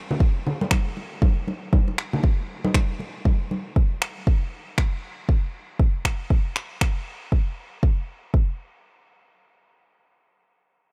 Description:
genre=afro house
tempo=118 BPM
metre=4/4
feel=swing 60% on 16ths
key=none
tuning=none
part: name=congas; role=percussion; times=0.1-3.6 s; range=none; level=-31 LUFS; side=equal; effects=none
part: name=electronic kick drum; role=drums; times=0.2-8.5 s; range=none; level=-22 LUFS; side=equal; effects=none
part: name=electronic finger snaps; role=drums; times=0.7-6.9 s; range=none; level=-33 LUFS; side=equal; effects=none
room=small room ambience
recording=none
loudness=-24 LUFS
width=mono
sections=0.0-7.8 A section; 7.8-10.9 B section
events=none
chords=none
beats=0.20 0.71 1.22 | 1.73 2.24 2.74 3.25 | 3.76 4.27 4.78 5.29 | 5.79 6.30 6.81 7.32 | 7.83 8.34

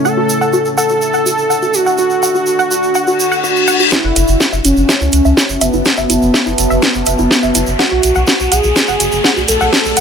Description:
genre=melodic techno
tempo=124 BPM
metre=4/4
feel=straight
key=F# minor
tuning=A4 = 440 Hz
part: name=wide unison lead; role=melody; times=0.0-10.0 s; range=B3 to A4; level=-15 LUFS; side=equal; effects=tape echo
part: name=deep dark ambient pad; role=sustained chords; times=0.0-10.0 s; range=A3 to B5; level=-22 LUFS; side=left 1 dB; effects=chorus, built-in reverb, sidechain pumping
part: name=tight sequenced synth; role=arpeggios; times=0.1-10.0 s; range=E4 to F#5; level=-19 LUFS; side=right 1 dB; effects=chorus, sidechain pumping, dub echo
part: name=tube shaker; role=percussion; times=0.1-10.0 s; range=none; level=-22 LUFS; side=right 5 dB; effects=none
part: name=reverse cymbal and riser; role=sound effects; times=3.2-10.0 s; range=none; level=-21 LUFS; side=left 5 dB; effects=none
part: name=electronic kick drum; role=drums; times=3.9-9.8 s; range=none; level=-25 LUFS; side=equal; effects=none
part: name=house drum kit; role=drums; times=3.9-10.0 s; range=hi-hat, snare drum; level=-14 LUFS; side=equal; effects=none
part: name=round analog bass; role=bass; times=4.0-10.0 s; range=F#1 to C#2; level=-17 LUFS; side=equal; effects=tube saturation, sidechain pumping
room=light reverb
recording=none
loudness=-10 LUFS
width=side -6 dB against mid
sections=0.0-3.9 A section; 3.9-10.0 B section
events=filter sweep on synth arpeggio sound 0.0-3.9, 3.9-10.0; reverse cymbal 3.2-3.9; build-up 3.9-10.0; drum fill 3.9-10.0; riser 3.9-10.0; filter sweep on analog synth lead 3.9-10.0; filter sweep 3.9-10.0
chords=0.0 D; 3.9 F#m7; 7.8 Bm7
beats=| 0.05 0.53 1.02 1.50 | 1.98 2.47 2.95 3.44 | 3.92 4.40 4.89 5.37 | 5.86 6.34 6.82 7.31 | 7.79 8.28 8.76 9.24 | 9.73

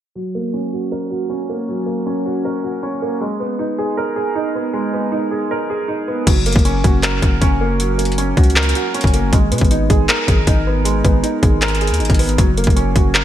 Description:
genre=hip hop, trap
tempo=157 BPM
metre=4/4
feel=half-time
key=unclear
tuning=A4 = 440 Hz
part: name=dark grand piano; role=accompaniment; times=0.2-13.2 s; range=F#3 to A#4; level=-19 LUFS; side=right 2 dB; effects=wide subtle chorus, low-pass filter
part: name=hard-hitting 808-style bass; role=bass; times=6.3-13.2 s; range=F#1 to B2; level=-18 LUFS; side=left 1 dB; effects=none
part: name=trap drum kit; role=drums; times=6.3-13.2 s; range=crash cymbal, handclaps, hi-hat, kick drum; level=-15 LUFS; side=left 1 dB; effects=none
room=light reverb, digital ambience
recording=bright 1980s-style digital production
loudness=-15 LUFS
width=side -11 dB against mid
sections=0.2-6.3 A section; 6.3-13.2 B section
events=filter sweep on grand piano 0.2-6.3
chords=0.2 F#; 3.2 G#madd9; 6.3 F#; 9.3 G#madd9; 12.4 F#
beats=| 0.15 0.54 0.92 1.30 | 1.68 2.06 2.45 2.83 | 3.21 3.59 3.98 4.36 | 4.74 5.12 5.50 5.89 | 6.27 6.65 7.03 7.42 | 7.80 8.18 8.56 8.94 | 9.33 9.71 10.09 10.47 | 10.86 11.24 11.62 12.00 | 12.38 12.77 13.15

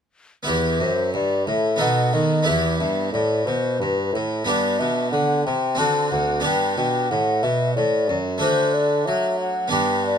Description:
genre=classical, baroque-style sonata movement with continuo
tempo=91 BPM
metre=3/4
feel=straight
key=E minor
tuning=A4 = 438 Hz
part: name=harpsichord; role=accompaniment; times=0.4-10.2 s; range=D2 to A4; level=-23 LUFS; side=right 1 dB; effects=none
part: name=mellow hollow baroque flute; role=melody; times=0.5-10.2 s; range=B4 to A5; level=-23 LUFS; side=left 3 dB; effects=none
part: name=warm bassoon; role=bass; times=0.5-10.2 s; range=D2 to F#3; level=-24 LUFS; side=right 2 dB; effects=none
room=little or no reverb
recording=close, detailed microphones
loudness=-19 LUFS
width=side -8 dB against mid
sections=0.5-10.2 A section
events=none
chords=0.5 Em; 1.8 B7; 2.5 Em; 4.5 G; 5.8 D7; 6.4 G; 8.4 D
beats=| 0.47 1.14 1.80 | 2.46 3.13 3.80 | 4.46 5.12 5.78 | 6.44 7.10 7.76 | 8.41 9.07 9.72

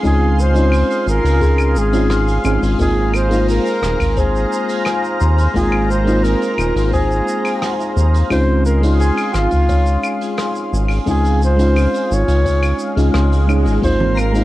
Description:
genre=sunset chillout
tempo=87 BPM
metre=4/4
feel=straight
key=unclear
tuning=A4 = 441 Hz
part: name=mellow FM electric piano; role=accompaniment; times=0.0-14.4 s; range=Ab3 to Ab4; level=-20 LUFS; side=left 1 dB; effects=chorus, auto-pan
part: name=lush unison pad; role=sustained chords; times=0.0-14.4 s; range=Ab4 to C6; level=-25 LUFS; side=right 1 dB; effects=chorus, phaser
part: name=buzzing kalimba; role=arpeggios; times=0.0-14.2 s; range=F4 to C6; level=-27 LUFS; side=left 1 dB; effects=tape echo
part: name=round analog bass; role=bass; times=0.0-14.4 s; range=Eb1 to Eb2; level=-15 LUFS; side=equal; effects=none
part: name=electronic kick drum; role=drums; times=0.0-14.0 s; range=none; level=-21 LUFS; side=equal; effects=overdrive
part: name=soft brush drum kit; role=drums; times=0.0-14.4 s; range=claves, hi-hat, rim click, shaker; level=-29 LUFS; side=equal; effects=none
part: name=breathy flugelhorn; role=melody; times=0.1-14.4 s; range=F4 to Db5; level=-22 LUFS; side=equal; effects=cassette tape
part: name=swell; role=sound effects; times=12.8-13.8 s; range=none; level=-30 LUFS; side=left 1 dB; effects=none
part: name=twinkling granular texture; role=texture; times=14.0-14.4 s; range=Bb4 to C6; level=-30 LUFS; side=left 3 dB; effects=built-in reverb
part: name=congas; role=percussion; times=14.0-14.1 s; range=none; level=-23 LUFS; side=right 3 dB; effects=none
room=light reverb, small room ambience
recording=home recording on cassette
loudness=-13 LUFS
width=side -16 dB against mid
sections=0.0-14.4 A section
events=swell 12.8-13.8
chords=0.0 Dbmaj7; 2.8 Ab69; 8.3 Dbmaj7; 13.8 Ab69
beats=| 0.04 0.72 1.41 2.10 | 2.79 3.48 4.17 4.86 | 5.55 6.24 6.93 7.62 | 8.31 9.00 9.69 10.38 | 11.07 11.76 12.45 13.14 | 13.83

